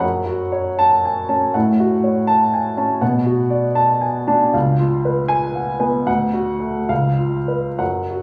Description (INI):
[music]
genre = classical, romantic character piece for solo piano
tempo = 63-83 BPM (dotted quarters)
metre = 6/8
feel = rubato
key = F# minor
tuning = A4 = 440 Hz
[part]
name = warm upright piano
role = solo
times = 0.0-8.2 s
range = C#2 to A5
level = -18 LUFS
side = equal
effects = none
[sound]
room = wet recital hall reverb, RT60 1.4 s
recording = recorded in a church or concert hall, small room ambience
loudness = -18 LUFS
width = mono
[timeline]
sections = 0.0-8.2 A section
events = none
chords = 0.0 F#m; 1.5 F#m/A; 3.0 Bm7; 4.5 C#7; 6.1 D; 6.9 C#7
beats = | 0.03 0.80 | 1.55 2.28 | 3.01 3.76 | 4.55 5.31 | 6.07 6.90 | 7.80